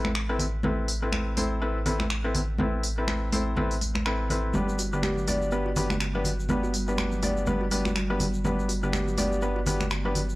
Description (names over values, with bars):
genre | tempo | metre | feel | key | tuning
afro house | 123 BPM | 4/4 | swing 58% on 16ths | unclear | A4 = 436 Hz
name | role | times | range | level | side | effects
felt-muted upright piano | stabs | 0.0-10.2 s | B3 to D5 | -30 LUFS | left 1 dB | tape echo
round analog bass | bass | 0.0-10.4 s | G1 to A1 | -30 LUFS | equal | none
deep house drum kit | drums | 0.0-10.3 s | finger snaps, hi-hat | -32 LUFS | equal | none
congas | percussion | 0.0-10.3 s | none | -31 LUFS | equal | none
kalimba | arpeggios | 4.5-10.2 s | D3 to G4 | -32 LUFS | right 1 dB | tape echo
egg shaker | percussion | 4.5-10.4 s | none | -42 LUFS | left 1 dB | none
room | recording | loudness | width
studio ambience | dry, gritty hardware recording, cassette tape | -24 LUFS | side -19 dB against mid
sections
0.0-10.4 A section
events
none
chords
0.0 Amadd9; 4.5 G